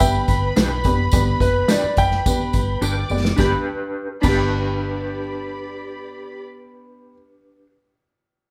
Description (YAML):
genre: uptempo 1960s-style soul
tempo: 106 BPM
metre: 4/4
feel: straight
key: G major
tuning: A4 = 440 Hz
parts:
  - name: clear concert grand piano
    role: melody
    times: 0.0-7.1 s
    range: B4 to B5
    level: -26 LUFS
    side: equal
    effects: none
  - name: muted studio string section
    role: second line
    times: 0.0-6.4 s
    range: G4 to D6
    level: -29 LUFS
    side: equal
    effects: none
  - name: clear upright piano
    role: accompaniment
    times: 0.0-7.1 s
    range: B3 to D5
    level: -29 LUFS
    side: equal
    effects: none
  - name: vintage muted fingered electric bass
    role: bass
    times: 0.0-7.1 s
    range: F#1 to B1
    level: -26 LUFS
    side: equal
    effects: none
  - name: natural country drum kit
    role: drums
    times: 0.0-4.4 s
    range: crash cymbal, hi-hat, kick drum, snare drum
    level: -24 LUFS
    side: equal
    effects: none
  - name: tambourine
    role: percussion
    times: 0.0-4.4 s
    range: none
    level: -36 LUFS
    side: equal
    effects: none
  - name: electric guitar through a small old amp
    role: stabs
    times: 0.6-7.7 s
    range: D4 to B4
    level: -29 LUFS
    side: equal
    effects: tremolo
room: moderate large studio reverb, RT60 1.0 s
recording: band playing live in one room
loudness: -20 LUFS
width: mono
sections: 0.0-3.4 A section; 3.4-5.6 B section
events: drum fill 2.8-3.4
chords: 0.0 G